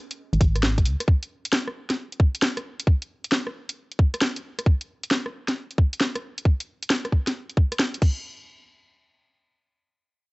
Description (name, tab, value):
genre	UK garage, two-step garage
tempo	134 BPM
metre	4/4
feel	swing 66% on 16ths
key	unclear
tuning	A4 = 445 Hz
part	warbly tape-like pad	texture	0.0-1.1 s	C#4 to D#5	-55 LUFS	right 6 dB	none
part	garage drum kit	drums	0.1-8.1 s	crash cymbal, hi-hat, rim click, snare drum	-24 LUFS	equal	overdrive
part	organ-like FM bass	bass	0.3-1.0 s	G#1 to C#2	-22 LUFS	equal	tube saturation
part	electronic kick drum	drums	0.4-8.1 s	none	-18 LUFS	equal	overdrive
room	little or no reverb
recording	dry, gritty hardware recording, cassette tape, nothing above 8.0 kHz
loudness	-22 LUFS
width	side -26 dB against mid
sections	0.0-8.2 A section; 8.2-10.3 B section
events	none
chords	0.0 C#sus2; 1.1 N.C.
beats	0.18 0.63 | 1.08 1.53 1.98 2.42 | 2.87 3.32 3.77 4.21 | 4.66 5.11 5.56 6.00 | 6.45 6.90 7.35 7.80